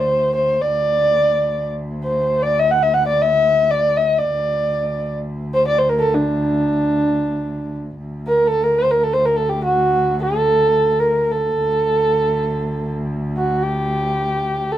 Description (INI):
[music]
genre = Persian modal ensemble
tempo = free time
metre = none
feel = none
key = D dastgah homayun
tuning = A4 = 441 Hz
[part]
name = dark kamancheh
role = melody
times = 0.0-14.8 s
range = D4 to F#5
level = -16 LUFS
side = equal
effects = none
[part]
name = dark cello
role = drone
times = 0.0-14.8 s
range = D2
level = -25 LUFS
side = equal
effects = none
[sound]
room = wet studio reverb, RT60 0.5 s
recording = minimal, uncompressed stereo recording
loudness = -16 LUFS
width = side -12 dB against mid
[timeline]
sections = 0.0-8.0 A section; 8.0-14.8 A section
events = none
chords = none